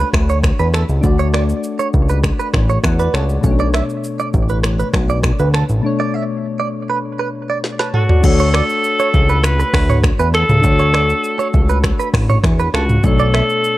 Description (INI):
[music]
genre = afrobeats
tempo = 100 BPM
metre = 4/4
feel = straight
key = D major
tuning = A4 = 438 Hz
[part]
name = soft electric-piano-like synth keys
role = accompaniment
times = 0.0-13.8 s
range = B2 to A5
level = -22 LUFS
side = left 4 dB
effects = chorus
[part]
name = direct-recorded clean electric guitar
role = riff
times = 0.0-13.4 s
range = A4 to E5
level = -22 LUFS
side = right 5 dB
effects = lush chorus, tape echo
[part]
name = fat analog bass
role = bass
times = 0.0-13.4 s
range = A1 to E2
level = -16 LUFS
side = equal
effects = none
[part]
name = afro-pop drum kit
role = drums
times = 0.1-13.8 s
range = crash cymbal, finger snaps, hi-hat, kick drum, rim click, shaker, snare drum, toms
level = -16 LUFS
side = equal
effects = overdrive, vintage 12-bit sampler grit
[part]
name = edgy alto saxophone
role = melody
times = 7.9-13.8 s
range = F#4 to B4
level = -18 LUFS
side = equal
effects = none
[sound]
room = little or no reverb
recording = none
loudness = -13 LUFS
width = side -16 dB against mid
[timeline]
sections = 0.0-8.2 A section; 8.2-13.8 B section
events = synth keys fill 2.5-3.4; drum fill 7.6-8.2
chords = 0.0 Dmaj7; 13.0 Bm9